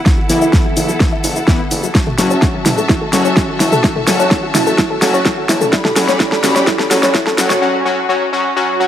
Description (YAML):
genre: melodic techno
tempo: 127 BPM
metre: 4/4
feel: straight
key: F# phrygian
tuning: A4 = 440 Hz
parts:
  - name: clear studio string section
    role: sustained chords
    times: 0.0-7.6 s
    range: E4 to B5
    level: -20 LUFS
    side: left 1 dB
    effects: sidechain pumping, low-pass filter
  - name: synth brass stab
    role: stabs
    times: 0.0-8.9 s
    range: E3 to F#4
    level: -18 LUFS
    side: left 2 dB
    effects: chorus, sidechain pumping, dub echo
  - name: soft round pluck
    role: arpeggios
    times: 0.1-7.6 s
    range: E4 to E5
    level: -18 LUFS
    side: equal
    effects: chorus, sidechain pumping, dub echo
  - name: deep house drum kit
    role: drums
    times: 0.1-7.6 s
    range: hi-hat, shaker, snare drum, toms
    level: -17 LUFS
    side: equal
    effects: none
  - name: electronic kick drum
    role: drums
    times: 0.1-7.2 s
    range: none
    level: -16 LUFS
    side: equal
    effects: none
  - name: gritty driven synth bass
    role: bass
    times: 0.3-7.5 s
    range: F#1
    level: -24 LUFS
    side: equal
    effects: sidechain pumping, high-pass filter
  - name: swell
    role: sound effects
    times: 8.8-8.9 s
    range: none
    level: -19 LUFS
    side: right 8 dB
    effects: none
room: moderate lush hall reverb, RT60 2.3 s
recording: dark, warm production, high-pass filter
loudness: -11 LUFS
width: side -10 dB against mid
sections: 0.0-8.9 A section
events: build-up 0.0-8.9; drum fill 0.0-7.6; filter sweep on synth arpeggio sound 0.0-8.9; break 7.6-8.9; swell 8.8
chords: 0.0 Esus2/F#; 1.9 F#m7; 5.7 G/F#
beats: | 0.06 0.53 1.00 1.48 | 1.95 2.42 2.89 3.37 | 3.84 4.31 4.78 5.26 | 5.73 6.20 6.67 7.15 | 7.62 8.09 8.56